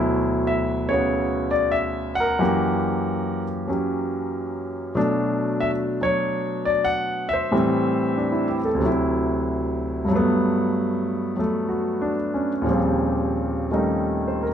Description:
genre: solo jazz.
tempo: 94 BPM.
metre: 4/4.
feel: swing 68% on 8ths.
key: D major.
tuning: A4 = 440 Hz.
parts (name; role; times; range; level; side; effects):
clear concert grand piano; solo; 0.0-14.5 s; D2 to F#5; -20 LUFS; equal; none.
room: moderate large studio reverb, RT60 0.9 s.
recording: band playing live in one room.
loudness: -20 LUFS.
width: side -8 dB against mid.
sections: 0.0-14.5 A section.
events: none.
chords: 0.0 D69; 2.4 F#7b9; 5.0 Bm7; 7.5 Am7; 8.8 D9; 10.1 Gmaj9; 12.7 Eb13.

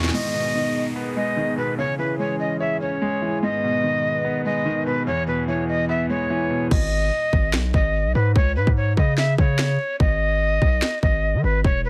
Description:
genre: hip hop, drill.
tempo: 146 BPM.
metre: 4/4.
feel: half-time.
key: G# minor.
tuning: A4 = 439 Hz.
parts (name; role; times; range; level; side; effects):
breathy bright jazz flute; melody; 0.0-11.9 s; B4 to C#6; -26 LUFS; equal; low-pass filter.
clear concert grand piano; accompaniment; 0.0-6.7 s; E2 to C#5; -28 LUFS; equal; low-pass filter.
hollow soft pad; sustained chords; 0.0-6.7 s; D#3 to E5; -32 LUFS; equal; chorus.
distorted 808-style bass; bass; 0.0-0.1, 6.7-11.9 s; E1 to D#3; -24 LUFS; equal; distortion.
drill drum kit; drums; 0.0-0.2, 6.7-11.7 s; crash cymbal, finger snaps, hi-hat, kick drum, snare drum; -23 LUFS; equal; none.
downlifter; sound effects; 0.1-3.4 s; none; -39 LUFS; equal; none.
room: little or no reverb.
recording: dense, heavily limited modern master.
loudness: -22 LUFS.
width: mono.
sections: 0.1-6.7 A section; 6.7-11.9 B section.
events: hi-hats muted 6.7-11.9.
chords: 0.1 G#m; 1.8 C#m; 3.4 G#m; 5.1 E; 6.7 G#m; 8.4 C#5; 10.0 G#5.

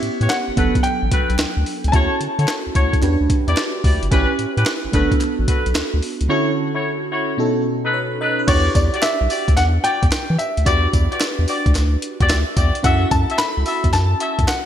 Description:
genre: R&B, new jack swing.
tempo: 110 BPM.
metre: 4/4.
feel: swing 67% on 16ths.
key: E dorian.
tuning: A4 = 439 Hz.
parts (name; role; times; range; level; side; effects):
clear concert grand piano; melody; 0.0-3.8, 8.5-14.7 s; C#5 to B5; -23 LUFS; left 1 dB; none.
FM electric piano with soft pad layer; accompaniment; 0.0-14.7 s; B2 to E5; -23 LUFS; right 2 dB; chorus.
round analog bass; bass; 0.0-14.5 s; G1 to E3; -19 LUFS; equal; none.
breakbeat sampler-style drum kit; drums; 0.0-14.7 s; crash cymbal, hi-hat, kick drum, snare drum, tambourine; -20 LUFS; equal; vintage 12-bit sampler grit.
warm horn section; stabs; 0.2-14.4 s; C#4 to E5; -24 LUFS; left 2 dB; none.
group handclap; percussion; 0.3-14.6 s; none; -36 LUFS; right 4 dB; none.
room: moderate lush hall reverb, RT60 1.7 s, digital ambience.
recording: bright 1980s-style digital production.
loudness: -16 LUFS.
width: side -10 dB against mid.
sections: 0.0-8.5 A section; 8.5-14.7 B section.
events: FM electric piano fill 12.0-12.8.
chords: 0.0 A9; 0.6 Gmaj9; 1.9 Dmaj9; 3.0 Em7; 4.1 A9; 4.9 Gmaj9 (rootless); 6.3 Dmaj9; 7.4 B7; 8.5 Em9; 12.8 F#m7.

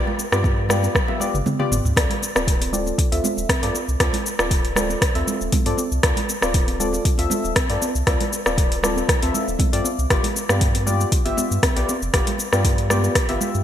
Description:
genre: afro house.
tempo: 118 BPM.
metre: 4/4.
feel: swing 53% on 16ths.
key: D dorian.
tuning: A4 = 440 Hz.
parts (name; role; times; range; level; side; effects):
deep mellow chord stab; stabs; 0.0-13.6 s; B3 to E5; -25 LUFS; left 2 dB; chorus, sidechain pumping, digital delay.
warm sub bass; bass; 0.0-13.6 s; D1 to G2; -24 LUFS; equal; tube saturation, sidechain pumping.
congas; percussion; 0.1-13.6 s; none; -29 LUFS; right 5 dB; none.
afro-pop drum kit; drums; 0.2-13.6 s; hi-hat, rim click, shaker, toms; -22 LUFS; left 1 dB; gated reverb.
electronic kick drum; drums; 0.4-13.3 s; none; -21 LUFS; equal; none.
room: light reverb, digital ambience.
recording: bright 1980s-style digital production.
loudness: -18 LUFS.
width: side -10 dB against mid.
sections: 0.0-13.6 A section.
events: drum fill 1.0-2.0; kick drops out 1.5-2.0.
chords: 0.0 G7; 2.0 Dm7; 10.1 G7.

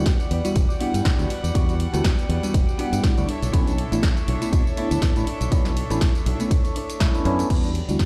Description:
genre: filtered disco house.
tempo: 121 BPM.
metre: 4/4.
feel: swing 55% on 16ths.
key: E dorian.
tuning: A4 = 441 Hz.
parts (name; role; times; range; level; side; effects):
bell-like tine electric piano; accompaniment; 0.0-8.1 s; G3 to F#5; -29 LUFS; equal; phaser, sidechain pumping, low-pass filter.
clear chamber violin section; sustained chords; 0.0-7.5 s; G3 to F#5; -38 LUFS; equal; sidechain pumping, low-pass filter.
direct-recorded clean electric guitar; riff; 0.0-8.1 s; B3 to D5; -35 LUFS; equal; phaser, sidechain pumping, low-pass filter.
fingered electric bass; bass; 0.0-8.0 s; E1 to B2; -27 LUFS; equal; sidechain pumping, low-pass filter.
electronic kick drum; drums; 0.1-8.1 s; none; -23 LUFS; equal; small room reverb.
house drum kit; drums; 0.1-8.1 s; crash cymbal, hi-hat, ride cymbal, snare drum, tambourine; -34 LUFS; equal; sidechain pumping on hats, small room reverb, sidechain pumping on perc, sidechain pumping on cymbals.
room: digital ambience.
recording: played on a big sound system in a bare room, stone room reverb.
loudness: -22 LUFS.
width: mono.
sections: 0.0-7.5 A section.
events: drop 0.0-7.5.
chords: 0.0 Em9; 3.3 Bm11; 7.5 Em9.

